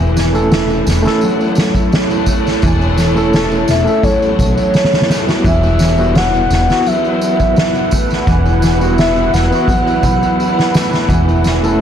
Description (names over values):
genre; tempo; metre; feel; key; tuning
trip hop; 85 BPM; 4/4; swing 53% on 16ths; unclear; A4 = 440 Hz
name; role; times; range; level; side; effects
deep dark ambient pad; sustained chords; 0.0-11.8 s; E4 to A5; -20 LUFS; right 2 dB; chorus, built-in reverb
concert harp; arpeggios; 0.0-11.8 s; E3 to E4; -19 LUFS; left 1 dB; digital delay
upright bass; bass; 0.0-11.8 s; E1 to B1; -16 LUFS; equal; none
tambourine; percussion; 0.0-11.8 s; none; -31 LUFS; right 2 dB; none
soft-mallet drum kit; drums; 0.1-11.6 s; kick drum, ride cymbal, snare drum; -16 LUFS; equal; soft clipping on snare
barky reed electric piano; accompaniment; 0.3-11.8 s; G3 to A4; -19 LUFS; right 1 dB; overdrive, fast tremolo, tape echo
pure breathy sine lead; melody; 3.7-10.7 s; C#5 to F#5; -18 LUFS; left 1 dB; chorus, phaser, tape echo
room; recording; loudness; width
small room ambience; blown-out, overdriven recording, vinyl crackle, overdrive; -11 LUFS; side -9 dB against mid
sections
0.0-11.8 A section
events
none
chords
0.0 A/E; 5.5 Emadd9; 11.1 A/E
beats
0.51 1.22 1.92 | 2.63 3.33 4.04 4.75 | 5.45 6.16 6.86 7.57 | 8.28 8.98 9.69 10.39 | 11.10 11.80